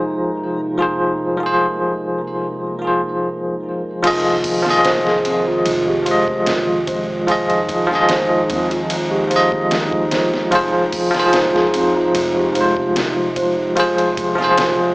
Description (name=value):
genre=trip hop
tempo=74 BPM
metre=4/4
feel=straight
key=F minor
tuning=A4 = 443 Hz
part: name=bell-like tine electric piano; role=accompaniment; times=0.0-14.9 s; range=F3 to Eb5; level=-17 LUFS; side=equal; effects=medium stereo tremolo, tape echo
part: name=warbly tape-like pad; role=sustained chords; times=0.0-14.9 s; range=C3 to F4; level=-26 LUFS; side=right 1 dB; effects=chorus, built-in reverb
part: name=upright bass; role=bass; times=0.0-14.9 s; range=F1 to Eb2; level=-35 LUFS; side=equal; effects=tube saturation
part: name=backwards swelling texture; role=texture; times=0.0-4.1 s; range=Bb3 to Bb4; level=-34 LUFS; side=equal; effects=none
part: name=celesta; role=arpeggios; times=4.0-14.9 s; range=C4 to C5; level=-21 LUFS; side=equal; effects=analog delay
part: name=trip hop sampler-style drum kit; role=drums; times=4.0-14.8 s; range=crash cymbal, hi-hat, kick drum, ride cymbal, snare drum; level=-24 LUFS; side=equal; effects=vintage 12-bit sampler grit, small room ambience
room=little or no reverb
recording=dry, gritty hardware recording, low-pass filter, small speaker sound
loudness=-15 LUFS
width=side -23 dB against mid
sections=0.0-4.0 A section; 4.0-14.9 B section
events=none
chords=0.0 Ab/F; 4.0 Fm7